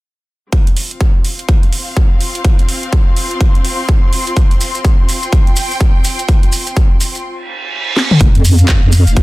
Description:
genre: bass house.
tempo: 125 BPM.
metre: 4/4.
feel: swing 61% on 16ths.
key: unclear.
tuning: A4 = 442 Hz.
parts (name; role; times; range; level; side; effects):
electronic kick drum; drums; 0.5-9.2 s; none; -11 LUFS; equal; studio reverb.
house drum kit; drums; 0.5-9.2 s; handclaps, hi-hat, snare drum, toms; -18 LUFS; equal; studio reverb.
rich symphonic string section; texture; 0.5-9.2 s; C4 to C6; -23 LUFS; left 2 dB; sidechain pumping.
maracas; percussion; 4.4-9.2 s; none; -22 LUFS; right 1 dB; none.
reverse cymbal; sound effects; 7.4-8.2 s; none; -19 LUFS; right 5 dB; none.
wobble bass; bass; 8.2-9.2 s; F1 to F2; -9 LUFS; equal; chorus, tube saturation, sidechain pumping.
room: digital ambience.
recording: dense, heavily limited modern master.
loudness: -10 LUFS.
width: side -20 dB against mid.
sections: 0.5-8.2 A section; 8.2-9.2 B section.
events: fade-in on string section 0.5-8.2; reverse cymbal 7.4-8.2; drum fill 8.0; filter sweep on wobble bass 8.2-9.2.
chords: 0.5 F5.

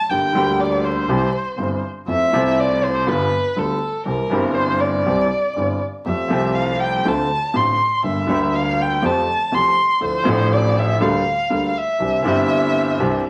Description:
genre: tango.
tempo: 121 BPM.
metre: 4/4.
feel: rubato.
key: F major.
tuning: A4 = 439 Hz.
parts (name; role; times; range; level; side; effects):
dark violin; second line; 0.0-13.3 s; A4 to C6; -22 LUFS; equal; none.
warm concert grand piano; accompaniment; 0.1-13.2 s; G1 to A4; -22 LUFS; equal; none.
clear double bass; bass; 0.1-13.2 s; G1 to F2; -30 LUFS; equal; none.
room: wet studio reverb, RT60 0.7 s.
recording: vinyl crackle.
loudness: -19 LUFS.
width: mono.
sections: 0.0-13.3 A section.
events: violin solo 0.0-13.3.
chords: 0.1 Gm; 1.1 C; 2.1 Fmaj7; 3.1 G7; 4.1 C; 6.0 Fadd9; 7.0 Dm7; 8.0 Gm; 9.0 Fadd9; 10.0 Dmadd9; 11.0 Gmadd9/D; 12.0 Cadd9.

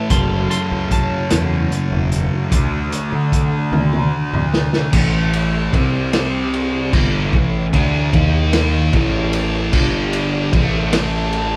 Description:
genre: psychedelic rock.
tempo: 50 BPM (dotted quarters).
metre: 6/8.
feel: straight.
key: A mixolydian.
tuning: A4 = 440 Hz.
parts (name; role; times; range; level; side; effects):
electric slide guitar; melody; 0.0-3.3 s; A5 to C6; -28 LUFS; equal; none.
string machine, cellos; sustained chords; 0.0-11.6 s; D3 to G5; -34 LUFS; equal; none.
thick fuzz guitar; riff; 0.0-11.6 s; F#2 to D#4; -21 LUFS; equal; distortion, phaser.
fuzz fingered electric bass; bass; 0.1-11.6 s; E1 to D3; -24 LUFS; equal; overdrive.
vintage drum kit; drums; 0.1-11.5 s; crash cymbal, hi-hat, kick drum, ride cymbal, snare drum, toms; -21 LUFS; equal; none.
room: moderate large studio reverb, RT60 1.3 s.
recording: band playing live in one room.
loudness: -17 LUFS.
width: mono.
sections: 0.0-4.9 A section; 4.9-11.6 B section.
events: electric slide guitar solo 0.0-4.9; drum fill 3.7-4.9.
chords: 0.1 F#m7; 2.5 D; 4.9 A; 5.7 C5; 6.9 A; 8.1 D#5; 8.9 A; 9.7 G5; 10.5 A5.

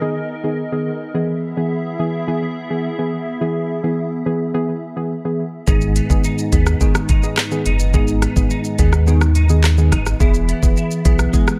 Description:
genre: dancehall.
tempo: 106 BPM.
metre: 4/4.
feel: straight.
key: G# minor.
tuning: A4 = 442 Hz.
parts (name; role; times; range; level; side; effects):
deep mellow chord stab; accompaniment; 0.0-11.5 s; D#3 to G#4; -23 LUFS; equal; chorus, analog delay.
hollow soft pad; sustained chords; 0.0-5.6 s; B3 to E5; -30 LUFS; equal; ensemble chorus, sidechain pumping.
clean electric guitar; arpeggios; 5.7-11.6 s; G#2 to E4; -25 LUFS; equal; ensemble chorus.
warm sub bass; bass; 5.7-11.3 s; E1 to D#2; -18 LUFS; equal; none.
island pop drum kit; drums; 5.7-11.6 s; handclaps, hi-hat, kick drum, rim click, shaker; -19 LUFS; equal; none.
room: little or no reverb.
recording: echo-heavy mix.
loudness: -18 LUFS.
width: mono.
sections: 0.0-5.7 A section; 5.7-11.6 B section.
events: none.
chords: 0.0 G#m; 1.1 E; 5.7 G#m; 10.2 E.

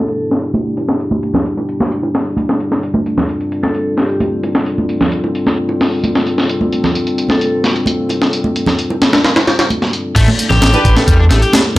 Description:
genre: breakbeat, breaks.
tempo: 131 BPM.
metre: 4/4.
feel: straight.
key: unclear.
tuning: A4 = 441 Hz.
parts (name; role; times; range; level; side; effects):
vibraphone with medium hard mallets; melody; 0.0-0.2, 3.6-4.2, 7.3-7.5, 11.0-11.5 s; G4 to A4; -21 LUFS; equal; old record sound, vintage 12-bit sampler grit, digital delay.
dark analog pad; sustained chords; 0.0-11.8 s; G3 to A4; -18 LUFS; left 1 dB; chorus, sidechain pumping.
breakbeat sampler-style drum kit; drums; 0.1-11.8 s; crash cymbal, hi-hat, kick drum, snare drum; -14 LUFS; equal; low-pass filter on hats, low-pass filter on snare, low-pass filter on kick, low-pass filter on cymbals.
congas and bongos; percussion; 0.5-11.8 s; none; -19 LUFS; right 2 dB; none.
overdriven electric guitar; riff; 10.2-11.6 s; G3 to G4; -17 LUFS; left 2 dB; tube saturation, digital delay.
overdriven picked electric bass; bass; 10.2-11.8 s; A1 to E2; -11 LUFS; equal; none.
warm studio string section; stabs; 10.7-10.9 s; D4 to B4; -19 LUFS; right 2 dB; vintage 12-bit sampler grit, digital delay.
room: light reverb.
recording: low-pass filter.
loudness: -12 LUFS.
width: side -17 dB against mid.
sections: 0.0-10.2 A section; 10.2-11.8 B section.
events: filter sweep 0.0-10.2; drop 10.2-11.8.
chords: 0.0 A9sus4 (rootless); 2.8 G9sus4; 10.2 A9sus4.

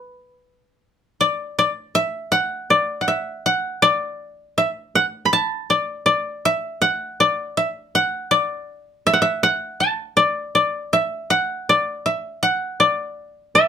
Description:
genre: andean folk.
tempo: 80 BPM.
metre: 3/4.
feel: straight.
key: unclear.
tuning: A4 = 441 Hz.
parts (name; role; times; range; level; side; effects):
koto; solo; 0.0-13.7 s; A4 to B5; -18 LUFS; equal; none.
room: light reverb.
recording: minimal, uncompressed stereo recording.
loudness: -18 LUFS.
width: side -8 dB against mid.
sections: 0.0-1.9 A section; 1.9-13.7 B section.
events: none.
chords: none.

